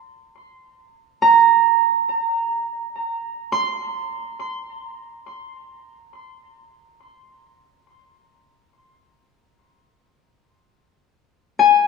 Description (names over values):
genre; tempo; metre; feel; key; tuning
ambient; free time; none; none; unclear; A4 = 437 Hz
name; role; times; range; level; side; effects
Celtic harp; solo; 0.0-11.9 s; Ab5 to C6; -17 LUFS; right 2 dB; tape echo
room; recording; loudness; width
wet concert hall reverb, RT60 2.2 s; cassette tape, small room ambience; -17 LUFS; side -4 dB against mid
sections
0.0-11.9 A section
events
none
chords
none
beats
free time